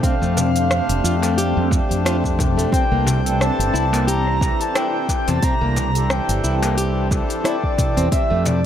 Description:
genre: organic downtempo.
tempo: 89 BPM.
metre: 4/4.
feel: swing 56% on 16ths.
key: C mixolydian.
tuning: A4 = 440 Hz.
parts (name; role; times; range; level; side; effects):
breathy flute-like synth lead; melody; 0.0-8.7 s; D5 to Bb5; -24 LUFS; equal; tremolo, wide subtle chorus, cassette tape, ping-pong delay.
pedal harmonium; accompaniment; 0.0-8.7 s; E3 to C5; -26 LUFS; left 3 dB; sidechain pumping, ping-pong delay.
granular cloud pad; sustained chords; 0.0-8.7 s; A3 to D5; -27 LUFS; equal; built-in reverb, sidechain pumping.
flamenco guitar; arpeggios; 0.0-8.4 s; A3 to G4; -27 LUFS; equal; ping-pong delay.
electronic kick drum; drums; 0.0-8.3 s; none; -21 LUFS; right 1 dB; overdrive.
organic electronic drum kit; drums; 0.0-8.6 s; hi-hat, rim click, shaker; -25 LUFS; left 1 dB; overdrive.
mellow fretless electric bass; bass; 0.2-8.7 s; F1 to F2; -20 LUFS; right 1 dB; tube saturation, lush chorus, sidechain pumping.
darbuka; percussion; 0.4-8.6 s; none; -28 LUFS; left 3 dB; none.
room: light reverb, digital ambience.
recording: none.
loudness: -16 LUFS.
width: side -10 dB against mid.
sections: 0.0-8.7 A section.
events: none.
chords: 0.0 F6; 2.7 C7; 8.1 F6.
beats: | 0.03 0.71 1.38 2.06 | 2.73 3.40 4.08 4.75 | 5.42 6.10 6.77 7.45 | 8.12.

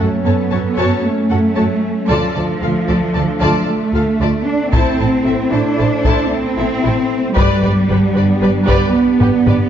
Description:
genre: cinematic, hybrid orchestral and electronic film score.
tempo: 114 BPM.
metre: 5/4.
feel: straight.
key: unclear.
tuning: A4 = 440 Hz.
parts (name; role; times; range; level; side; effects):
warm symphonic violin section; second line; 0.0-9.6 s; G4 to A5; -23 LUFS; left 3 dB; none.
warm symphonic viola section; accompaniment; 0.0-9.5 s; E4 to B4; -23 LUFS; right 1 dB; none.
hollow soft pad; sustained chords; 0.0-9.7 s; F#3 to D5; -22 LUFS; right 1 dB; chorus.
warm symphonic cello section; bass; 0.0-9.7 s; F3 to D4; -16 LUFS; right 1 dB; none.
warm symphonic double bass section; bass; 0.0-9.6 s; G1 to F#2; -20 LUFS; right 2 dB; none.
solo taiko drums; drums; 4.7-9.7 s; none; -18 LUFS; left 2 dB; none.
room: moderate scoring stage reverb, RT60 1.5 s.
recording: dark, warm production, nothing above 7.8 kHz.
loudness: -13 LUFS.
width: side -9 dB against mid.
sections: 0.0-9.7 A section.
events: drum fill 9.2-9.7.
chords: 0.0 F#m; 2.1 Dm; 4.7 Am; 7.4 G.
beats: 0.52 1.05 1.57 | 2.10 2.62 3.15 3.68 4.20 | 4.73 5.26 5.78 6.31 6.83 | 7.36 7.89 8.41 8.94 9.47.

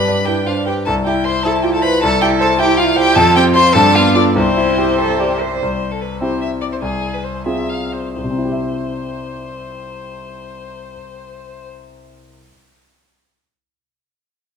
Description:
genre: quick classical-period movement for piano quartet.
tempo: 82-106 BPM (dotted quarters).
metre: 6/8.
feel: rubato.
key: C major.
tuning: A4 = 440 Hz.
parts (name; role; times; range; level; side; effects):
rich violin; melody; 0.0-11.7 s; Ab4 to C6; -19 LUFS; left 3 dB; none.
rich violin; second line; 0.0-5.4 s; C4 to C5; -20 LUFS; left 1 dB; none.
warm cello; second line; 0.0-5.6 s; D4 to C5; -21 LUFS; right 10 dB; none.
clear concert grand piano; accompaniment; 0.0-12.6 s; C2 to E5; -17 LUFS; equal; none.
room: wet recital hall reverb, RT60 1.4 s.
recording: none.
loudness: -13 LUFS.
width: side -6 dB against mid.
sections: 0.0-5.6 A section; 5.6-8.2 B section; 8.2-10.9 C section.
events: slowing down 5.0-8.2.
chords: 0.0 G; 0.9 C; 3.2 F5; 3.8 G9; 4.4 C; 6.8 Fm/C; 8.2 C.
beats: 0.26 | 0.86 1.45 | 2.03 2.60 | 3.17 3.76 | 4.36 4.98 | 5.60 6.20 | 6.80 7.45 | 8.16 8.85 | 9.53 10.22.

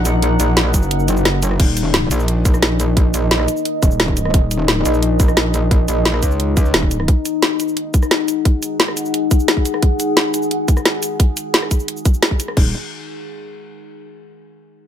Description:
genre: dark technical drum and bass.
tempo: 175 BPM.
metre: 4/4.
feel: straight.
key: Eb minor.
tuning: A4 = 440 Hz.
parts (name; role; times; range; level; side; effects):
deep dark ambient pad; sustained chords; 0.0-12.7 s; Eb4 to Gb5; -22 LUFS; left 2 dB; chorus, built-in reverb, sidechain pumping.
metallic wobble bass; bass; 0.0-7.1, 12.6-12.7 s; Eb1 to Db2; -17 LUFS; equal; chorus, sidechain pumping.
drum and bass drum kit; drums; 0.1-12.6 s; cabasa, crash cymbal, hi-hat, rim click, snare drum; -18 LUFS; equal; none.
electronic kick drum; drums; 0.7-12.6 s; none; -14 LUFS; equal; none.
room: light reverb.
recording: none.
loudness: -14 LUFS.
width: side -9 dB against mid.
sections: 0.0-1.6 A section; 1.6-12.6 B section; 12.6-13.9 C section.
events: drop 0.0-1.6; kick drops out 0.9-1.6.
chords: 0.0 Eb5.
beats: | 0.23 0.57 0.91 1.25 | 1.60 1.94 2.28 2.62 | 2.97 3.31 3.65 4.00 | 4.34 4.68 5.03 5.37 | 5.71 6.05 6.40 6.74 | 7.08 7.42 7.77 8.11 | 8.45 8.80 9.14 9.48 | 9.82 10.17 10.51 10.85 | 11.20 11.54 11.88 12.22 | 12.57.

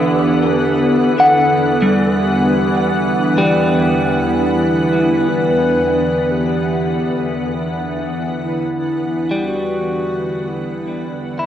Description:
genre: ambient.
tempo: 58 BPM.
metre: 4/4.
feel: straight.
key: E minor.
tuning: A4 = 440 Hz.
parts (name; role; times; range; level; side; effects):
soft additive organ-like pad; sustained chords; 0.0-11.5 s; D3 to F#5; -17 LUFS; equal; ensemble chorus, built-in reverb, cassette tape.
clean electric guitar; arpeggios; 0.0-11.5 s; G3 to F#5; -18 LUFS; equal; cassette tape, analog delay.
bright studio double bass section; bass; 0.0-11.5 s; E2; -31 LUFS; equal; none.
overtone-sweeping drone; drone; 0.0-11.5 s; E3; -28 LUFS; equal; chorus, built-in reverb, cassette tape.
mellow hollow alto flute; melody; 0.1-11.5 s; E4 to B4; -22 LUFS; equal; analog delay.
room: wet spring reverb, RT60 1.4 s, small room reverb.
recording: home recording on cassette.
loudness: -14 LUFS.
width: side -10 dB against mid.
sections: 0.0-11.5 A section.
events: fade-in on alto flute 0.0-11.5; fade-out on double bass section 0.0-11.5; fade-out 5.6-11.5.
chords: 0.0 Em7.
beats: | 0.09 1.14 2.18 3.22 | 4.25 5.29 6.31 7.34 | 8.38 9.43 10.47.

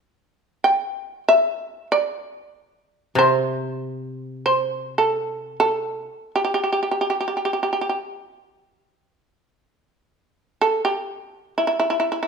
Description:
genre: japanese traditional, Japanese chamber music.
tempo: free time.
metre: none.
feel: none.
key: unclear.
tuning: A4 = 441 Hz.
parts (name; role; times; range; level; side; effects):
shamisen; melody; 0.6-12.3 s; E4 to G5; -20 LUFS; right 1 dB; none.
koto; accompaniment; 3.2-6.1 s; C3; -26 LUFS; left 2 dB; none.
room: moderate recital hall reverb, RT60 1.3 s.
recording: minimal, uncompressed stereo recording.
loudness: -20 LUFS.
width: side -5 dB against mid.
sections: 0.0-12.3 A section.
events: slowing down 7.2-12.3.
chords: none.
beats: free time.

